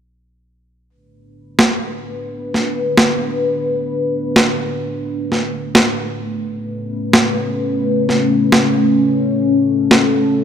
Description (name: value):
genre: half-time drum and bass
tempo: 173 BPM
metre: 4/4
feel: half-time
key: B minor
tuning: A4 = 438 Hz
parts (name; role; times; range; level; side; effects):
- dark analog pad; sustained chords; 1.8-10.4 s; A3 to B4; -17 LUFS; left 1 dB; chorus, phaser, vintage 12-bit sampler grit
- electronic snare drum; drums; 1.6-10.0 s; none; -14 LUFS; right 1 dB; overdrive
room: moderate echo chamber reverb, RT60 2.2 s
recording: faint mains hum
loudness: -14 LUFS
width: side -8 dB against mid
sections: 0.9-10.4 A section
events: none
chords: 0.9 Bm7; 6.4 Aadd9